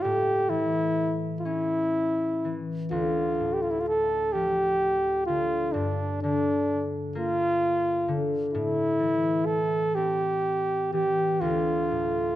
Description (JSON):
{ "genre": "celtic folk, Celtic slow air", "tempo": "42 BPM (dotted quarters)", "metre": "6/8", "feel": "rubato", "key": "D minor", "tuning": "A4 = 436 Hz", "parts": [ { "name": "mellow flugelhorn", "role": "melody", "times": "0.0-12.4 s", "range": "D4 to A4", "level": "-25 LUFS", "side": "equal", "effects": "none" }, { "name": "concert harp", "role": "accompaniment", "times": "0.0-12.4 s", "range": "D2 to C#4", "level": "-29 LUFS", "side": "left 2 dB", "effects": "none" } ], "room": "moderate scoring stage reverb, RT60 1.6 s", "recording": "none", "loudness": "-24 LUFS", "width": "side -14 dB against mid", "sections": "0.0-12.4 A section", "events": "none", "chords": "0.0 A; 2.9 Dm; 5.7 Gm; 8.5 Am; 11.4 Dm" }